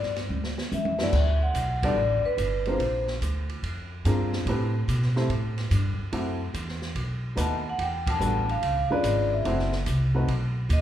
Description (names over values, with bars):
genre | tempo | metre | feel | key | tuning
jazz, small-group swing and bop | 144 BPM | 4/4 | swing 67% on 8ths | unclear | A4 = 439 Hz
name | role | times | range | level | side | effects
vibraphone with medium mallets | melody | 0.0-3.1, 7.4-10.8 s | B4 to A5 | -28 LUFS | left 2 dB | none
upright bass | bass | 0.0-10.8 s | F#1 to B2 | -26 LUFS | equal | none
open jazz drum kit | drums | 0.0-10.8 s | crash cymbal, hi-hat, kick drum, ride cymbal, snare drum, toms | -34 LUFS | right 1 dB | none
warm baby grand piano | accompaniment | 1.0-10.3 s | G2 to C5 | -31 LUFS | equal | none
room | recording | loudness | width
wet large studio reverb, RT60 1.2 s | heard from further back in the room | -24 LUFS | side -11 dB against mid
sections
0.0-1.1 A section; 1.1-10.8 B section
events
drum fill 0.3-1.1; band accent 1.8, 8.0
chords
0.3 Dadd9; 1.1 Gmaj9; 2.8 A#9; 4.5 Am9; 6.1 F#m7b5; 7.0 B7; 7.8 Em11; 8.6 C#7b9; 9.5 F#m7b5; 10.3 B